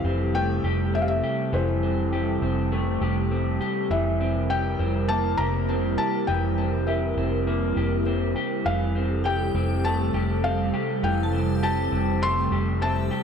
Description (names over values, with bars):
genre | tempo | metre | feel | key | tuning
dream pop | 101 BPM | 4/4 | straight | F major | A4 = 440 Hz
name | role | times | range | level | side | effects
felt-muted upright piano | melody | 0.0-13.2 s | C5 to C6 | -29 LUFS | left 2 dB | ping-pong delay
warbly tape-like pad | sustained chords | 0.0-13.2 s | C3 to Bb4 | -28 LUFS | right 2 dB | chorus, built-in reverb, phaser
electric guitar through a small old amp | arpeggios | 0.0-13.2 s | E3 to G4 | -28 LUFS | left 3 dB | lush chorus, ping-pong delay
vintage muted fingered electric bass | bass | 0.0-13.1 s | F1 | -26 LUFS | equal | none
shimmering bell with halo | texture | 9.2-13.2 s | E5 to A5 | -40 LUFS | right 2 dB | ensemble chorus, tremolo, ping-pong delay
room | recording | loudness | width
moderate lush hall reverb, RT60 1.9 s, digital ambience | none | -22 LUFS | side -7 dB against mid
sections
0.0-13.2 A section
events
none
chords
0.0 Fmaj9; 3.9 C7/F; 8.7 Fmaj9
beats
0.34 0.93 | 1.53 2.12 2.72 3.31 | 3.90 4.50 5.09 5.69 | 6.28 6.87 7.47 8.06 | 8.66 9.25 9.85 10.44 | 11.03 11.63 12.22 12.81